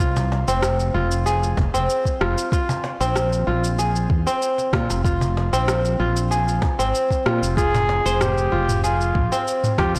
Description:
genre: organic downtempo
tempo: 95 BPM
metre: 4/4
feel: straight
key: F minor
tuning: A4 = 440 Hz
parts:
  - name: kora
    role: arpeggios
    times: 0.0-10.0 s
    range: C4 to C5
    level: -25 LUFS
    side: equal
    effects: digital delay, shimmer reverb
  - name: mellow fretless electric bass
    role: bass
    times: 0.0-10.0 s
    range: F1 to Bb2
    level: -25 LUFS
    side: equal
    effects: tube saturation, ensemble chorus
  - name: afro-pop drum kit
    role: drums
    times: 0.0-10.0 s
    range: rim click, shaker, toms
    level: -29 LUFS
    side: equal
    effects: soft clipping on snare
  - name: cajon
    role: percussion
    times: 0.2-10.0 s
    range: none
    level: -32 LUFS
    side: equal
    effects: none
  - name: electronic kick drum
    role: drums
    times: 1.6-9.9 s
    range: none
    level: -24 LUFS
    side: equal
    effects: none
  - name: trumpet with bucket mute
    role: melody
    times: 7.6-9.9 s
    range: F4 to Ab4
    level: -25 LUFS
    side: equal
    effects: digital delay, shimmer reverb
room: moderate lush hall reverb, RT60 1.7 s, studio ambience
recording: blown-out, overdriven recording, overdrive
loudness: -21 LUFS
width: mono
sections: 0.0-10.0 A section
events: none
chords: 0.0 Fm; 2.5 Bb5; 7.6 Fm

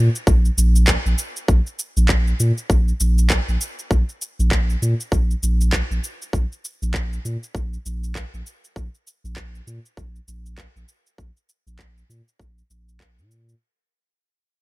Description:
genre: organic downtempo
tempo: 99 BPM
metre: 4/4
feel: swing 59% on 16ths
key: unclear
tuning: A4 = 437 Hz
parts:
  - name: warm sub bass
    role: bass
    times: 0.0-13.5 s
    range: Bb1 to Bb2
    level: -19 LUFS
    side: equal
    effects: sidechain pumping
  - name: electronic shaker and handclaps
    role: drums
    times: 0.2-13.6 s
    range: none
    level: -26 LUFS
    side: equal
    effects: overdrive
  - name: electronic kick drum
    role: drums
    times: 0.3-13.1 s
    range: none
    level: -20 LUFS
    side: equal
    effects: overdrive
room: little or no reverb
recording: none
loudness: -18 LUFS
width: side -20 dB against mid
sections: 0.0-13.6 A section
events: fade-out 0.0-13.6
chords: none

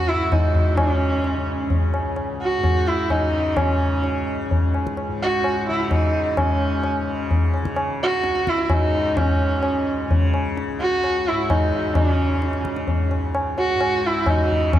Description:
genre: indian classical, Hindustani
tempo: 129 BPM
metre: 3/4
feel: straight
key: C# raga bhimpalasi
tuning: A4 = 440 Hz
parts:
  - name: rich sarangi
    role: melody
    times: 0.0-14.8 s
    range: C#4 to F#4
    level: -22 LUFS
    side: right 1 dB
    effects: diffuse ambient delay
  - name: tanpura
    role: drone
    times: 0.0-14.8 s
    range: C#2 to C#3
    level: -29 LUFS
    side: left 2 dB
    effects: none
  - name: tabla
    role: percussion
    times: 0.1-14.8 s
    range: none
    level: -21 LUFS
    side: left 1 dB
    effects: none
room: wet cathedral reverb, RT60 4.8 s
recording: dreamy mix soaked in reverb, cassette tape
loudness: -18 LUFS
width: side -12 dB against mid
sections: 0.0-6.4 A section; 6.4-14.8 B section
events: none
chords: none

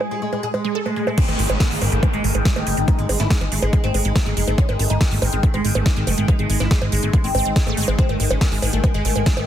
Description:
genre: psychedelic trance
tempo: 141 BPM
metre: 4/4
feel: straight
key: unclear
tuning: A4 = 440 Hz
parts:
  - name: evolving wavetable pad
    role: sustained chords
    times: 0.0-9.5 s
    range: G#3 to G#4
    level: -29 LUFS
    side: equal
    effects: phaser, built-in reverb, sidechain pumping
  - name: wide unison pluck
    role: riff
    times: 0.0-9.4 s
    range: G#3 to A4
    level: -27 LUFS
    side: moving between left 3 dB and right 4 dB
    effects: auto-pan, sidechain pumping, digital delay
  - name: big-room dance drum kit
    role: drums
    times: 0.0-9.5 s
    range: bongos, crash cymbal, hi-hat, snare drum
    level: -25 LUFS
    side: right 2 dB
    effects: none
  - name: oud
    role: melody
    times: 0.1-9.4 s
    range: D#3 to G#4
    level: -27 LUFS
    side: left 1 dB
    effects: phaser, sidechain pumping, digital delay
  - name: electronic kick drum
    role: drums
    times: 1.2-9.3 s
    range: none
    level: -18 LUFS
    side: equal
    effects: none
  - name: downlifter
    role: sound effects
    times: 1.2-4.6 s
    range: none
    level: -30 LUFS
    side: right 1 dB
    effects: none
  - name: plucky analog bass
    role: bass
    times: 1.3-9.4 s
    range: F#1 to G#1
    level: -21 LUFS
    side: equal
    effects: none
room: light reverb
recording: dense, heavily limited modern master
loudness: -17 LUFS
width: side -11 dB against mid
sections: 0.0-1.2 A section; 1.2-9.5 B section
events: filter sweep on drum 0.0-1.2; drop 1.2-9.5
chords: 0.0 G#5

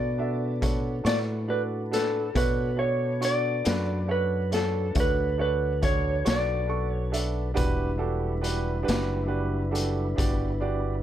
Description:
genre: slow blues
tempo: 46 BPM (dotted quarters)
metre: 12/8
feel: straight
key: B minor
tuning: A4 = 439 Hz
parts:
  - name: clean lap steel guitar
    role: melody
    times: 0.0-7.2 s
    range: A4 to D5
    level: -28 LUFS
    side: equal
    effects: plate reverb
  - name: clear concert grand piano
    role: accompaniment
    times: 0.0-10.9 s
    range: D4 to C#6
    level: -32 LUFS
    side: right 6 dB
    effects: plate reverb
  - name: mellow tonewheel organ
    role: sustained chords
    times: 0.0-11.0 s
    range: G3 to B4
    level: -35 LUFS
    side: equal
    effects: slow rotary speaker, plate reverb
  - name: fingered electric bass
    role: bass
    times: 0.0-11.0 s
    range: E1 to B2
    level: -29 LUFS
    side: left 1 dB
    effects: none
  - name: raw garage drum kit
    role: drums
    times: 0.6-10.4 s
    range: hi-hat, kick drum, snare drum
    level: -29 LUFS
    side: left 1 dB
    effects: none
room: light reverb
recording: none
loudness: -24 LUFS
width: side -11 dB against mid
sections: 0.0-11.0 A section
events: none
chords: 0.0 Bm7; 7.6 Em7

